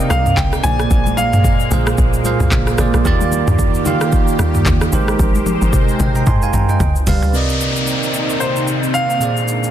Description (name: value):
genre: amapiano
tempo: 112 BPM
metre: 4/4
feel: swing 58% on 16ths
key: unclear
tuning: A4 = 441 Hz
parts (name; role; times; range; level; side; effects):
- clear grand piano; melody; 0.0-1.7, 8.4-9.7 s; C5 to Ab5; -20 LUFS; equal; digital delay
- bell-like tine electric piano; accompaniment; 0.0-9.7 s; Bb2 to C6; -19 LUFS; right 4 dB; none
- lush unison pad; sustained chords; 0.0-9.7 s; C3 to C5; -24 LUFS; left 2 dB; chorus, phaser
- tight log drum bass; bass; 0.1-7.2 s; F1 to Ab2; -19 LUFS; equal; none
- afro-pop drum kit; drums; 0.1-9.7 s; handclaps, hi-hat, kick drum, rim click, shaker, toms; -17 LUFS; equal; overdrive
- congas; percussion; 0.1-7.2 s; none; -26 LUFS; left 4 dB; none
- downlifter; sound effects; 7.3-9.7 s; none; -22 LUFS; left 2 dB; none
room: light reverb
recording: dense, heavily limited modern master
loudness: -13 LUFS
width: side -11 dB against mid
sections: 0.0-7.3 A section; 7.3-9.7 B section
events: drop 0.0-7.3; drum fill 5.2-7.3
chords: 0.0 Cm9; 0.6 Bb9; 3.1 Ebmaj7; 4.9 Abmaj9; 6.8 G7; 7.3 Cm9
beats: 0.37 | 0.91 1.45 1.98 2.52 | 3.05 3.59 4.12 4.66 | 5.20 5.73 6.27 6.80 | 7.34 7.87 8.41 8.95 | 9.48